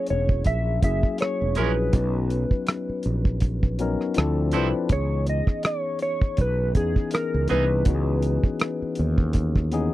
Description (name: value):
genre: R&B, neo-soul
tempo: 81 BPM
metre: 4/4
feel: swing 55% on 16ths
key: C# dorian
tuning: A4 = 440 Hz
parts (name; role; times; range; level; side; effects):
- mellow electric guitar; melody; 0.0-9.7 s; G#4 to E5; -28 LUFS; right 1 dB; analog chorus
- barky tine electric piano; accompaniment; 0.0-9.9 s; A#2 to B4; -28 LUFS; left 5 dB; overdrive
- fretless electric bass; bass; 0.1-9.9 s; E1 to E2; -24 LUFS; right 1 dB; none
- cloth-damped thuddy drum kit; drums; 0.1-9.9 s; hi-hat, kick drum, rim click; -22 LUFS; right 1 dB; none
- electric guitar at the edge of break-up; second line; 1.6-7.6 s; E3 to A#4; -28 LUFS; right 7 dB; lush chorus
room: little or no reverb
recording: dry, close 1970s-style studio recording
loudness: -21 LUFS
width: side -15 dB against mid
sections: 0.0-9.9 A section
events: none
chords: 0.0 F#9; 1.9 Bmaj9; 4.2 Dm9; 4.9 C#m9